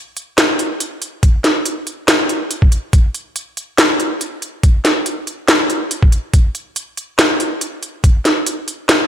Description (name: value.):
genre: dubstep.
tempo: 141 BPM.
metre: 4/4.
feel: swing 54% on 16ths, half-time.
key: none.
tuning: none.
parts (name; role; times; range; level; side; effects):
garage drum kit; drums; 0.2-9.0 s; hi-hat, snare drum; -14 LUFS; equal; none.
electronic kick drum; drums; 1.2-8.1 s; none; -10 LUFS; equal; none.
room: moderate echo chamber reverb, RT60 1.8 s.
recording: none.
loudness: -14 LUFS.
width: side -10 dB against mid.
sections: 0.0-9.1 A section.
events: none.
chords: none.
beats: 0.38 0.80 | 1.23 1.66 2.08 2.51 | 2.93 3.36 3.78 4.21 | 4.63 5.06 5.49 5.91 | 6.34 6.76 7.19 7.61 | 8.04 8.46 8.89.